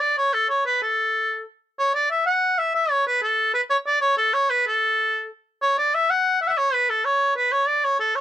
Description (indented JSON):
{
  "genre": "medieval",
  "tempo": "125 BPM (dotted quarters)",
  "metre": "6/8",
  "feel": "straight",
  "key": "A major",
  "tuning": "A4 = 440 Hz",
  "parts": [
    { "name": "bright shawm", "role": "solo", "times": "0.0-8.2 s", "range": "A4 to F#5", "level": "-19 LUFS", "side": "equal", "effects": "none" }
  ],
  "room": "little or no reverb",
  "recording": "dry, close 1970s-style studio recording",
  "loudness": "-19 LUFS",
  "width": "side -11 dB against mid",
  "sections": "0.0-3.7 A section; 3.7-8.2 A section",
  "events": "none",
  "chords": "none",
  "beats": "0.33 | 0.82 1.30 | 1.78 2.26 | 2.74 3.22 | 3.70 4.18 | 4.66 5.14 | 5.62 6.10 | 6.58 7.06 | 7.54 8.01"
}